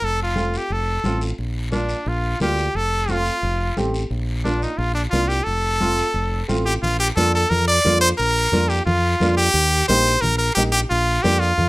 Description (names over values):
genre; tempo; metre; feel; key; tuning
latin, cumbia; 176 BPM; 4/4; straight; Bb major; A4 = 440 Hz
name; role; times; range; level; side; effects
brilliant trumpet; melody; 0.0-11.7 s; D4 to D5; -20 LUFS; equal; none
fingered electric bass; bass; 0.0-11.7 s; F1 to F2; -22 LUFS; equal; none
congas; percussion; 0.0-11.7 s; none; -28 LUFS; left 1 dB; none
guiro; percussion; 0.0-11.7 s; none; -35 LUFS; left 2 dB; none
clear upright piano; accompaniment; 0.4-11.5 s; A3 to G4; -25 LUFS; right 1 dB; none
room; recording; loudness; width
light reverb; rough home demo mix; -17 LUFS; side -20 dB against mid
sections
0.0-6.8 A section; 6.8-11.7 B section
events
none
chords
0.0 F; 1.4 Bb; 2.7 F; 4.1 Bb; 5.5 F; 6.8 Bb; 9.6 Eb; 10.9 Bb